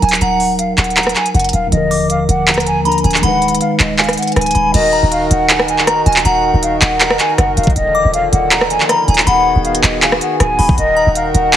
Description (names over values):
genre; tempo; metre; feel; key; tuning
hip hop, trap; 159 BPM; 4/4; half-time; Eb harmonic minor; A4 = 440 Hz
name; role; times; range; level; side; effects
breathy concert flute; melody; 0.0-11.6 s; Eb5 to Bb5; -16 LUFS; left 1 dB; low-pass filter, digital delay
delicate synth tine bell; second line; 0.0-11.6 s; Ab5 to D6; -21 LUFS; equal; chorus, phaser, digital delay
muted felt-like synth keys; accompaniment; 0.0-4.8 s; Eb2 to B4; -18 LUFS; equal; chorus, low-pass filter
short 808-style bass; bass; 0.0-11.6 s; D1 to Gb1; -18 LUFS; equal; none
trap drum kit; drums; 0.0-11.6 s; crash cymbal, handclaps, hi-hat, kick drum, rim click; -15 LUFS; equal; overdrive, vintage 12-bit sampler grit
pedal harmonium; sustained chords; 4.7-11.6 s; D3 to Bb4; -19 LUFS; equal; stereo widening
room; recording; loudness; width
light reverb; heavily compressed radio sound; -11 LUFS; side -10 dB against mid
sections
0.0-4.7 A section; 4.7-11.6 B section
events
none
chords
0.0 Ebm; 1.7 Bb/Eb; 3.2 B6/D#; 4.7 Ebm; 7.8 Bb/Eb; 9.3 B6/D#; 10.8 Ebm